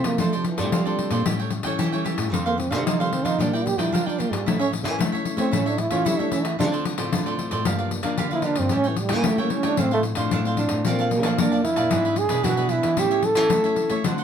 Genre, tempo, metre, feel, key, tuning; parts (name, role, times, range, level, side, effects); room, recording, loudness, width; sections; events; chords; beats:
samba and choro; 113 BPM; 4/4; straight; A4 = 440 Hz
mellow trombone; melody; 0.0-14.1 s; C3 to A4; -23 LUFS; right 3 dB
cavaquinho; accompaniment; 0.0-14.2 s; D4 to A5; -30 LUFS; right 4 dB
nylon-string guitar; accompaniment; 0.0-14.2 s; F2 to A4; -29 LUFS; left 6 dB
nylon-string guitar; bass; 0.0-14.2 s; F2 to Bb3; -27 LUFS; right 1 dB
pandeiro; percussion; 0.0-14.2 s; -27 LUFS; left 4 dB
moderate small room reverb, RT60 0.5 s; -20 LUFS; side -8 dB against mid
0.0-14.2 A section
trombone solo 0.0-14.2
0.2 Dm7; 1.3 A7; 2.3 F7; 3.4 Bb6; 4.5 A; 6.6 Dm7; 7.7 Gm7; 8.7 A7; 9.8 Dm7/A; 10.8 Bbmaj7; 11.9 E7/G#; 13.0 A
| 0.19 0.72 1.26 1.79 | 2.32 2.86 3.39 3.92 | 4.46 4.99 5.52 6.05 | 6.59 7.12 7.65 8.18 | 8.72 9.25 9.78 10.32 | 10.85 11.38 11.91 12.45 | 12.98 13.51 14.05